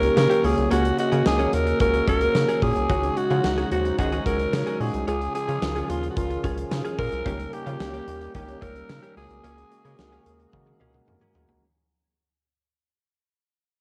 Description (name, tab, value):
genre	1980s-style pop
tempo	110 BPM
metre	4/4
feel	straight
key	unclear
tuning	A4 = 440 Hz
part	growling alto saxophone	melody	0.0-11.0 s	F4 to Bb4	-28 LUFS	equal	cassette tape
part	mellow tine electric piano	accompaniment	0.0-11.6 s	Db3 to Bb5	-30 LUFS	equal	subtle chorus, cassette tape
part	direct-recorded clean electric guitar	riff	0.0-11.5 s	Bb3 to Ab4	-34 LUFS	equal	subtle chorus, cassette tape
part	rubbery square bass	bass	0.0-11.6 s	C2 to Db3	-30 LUFS	equal	none
part	huge arena drum kit	drums	0.0-11.6 s	hi-hat, kick drum, snare drum, tambourine, toms	-32 LUFS	equal	cassette tape
part	chorused pulse-width pad	sustained chords	2.9-11.6 s	Db3 to Gb4	-44 LUFS	equal	none
part	funky polysynth comp	stabs	2.9-8.6 s	Eb3 to Ab4	-38 LUFS	equal	none
room	moderate spring reverb, RT60 2.0 s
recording	home recording on cassette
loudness	-24 LUFS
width	mono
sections	0.0-11.6 A section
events	fade-out 0.3-11.6; drum fill 10.5-11.6; tine electric piano fill 10.5-11.6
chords	0.4 Gbadd9; 2.9 Ab7sus4/Db; 5.1 Db; 7.3 Eb7/Db; 9.2 Gbadd9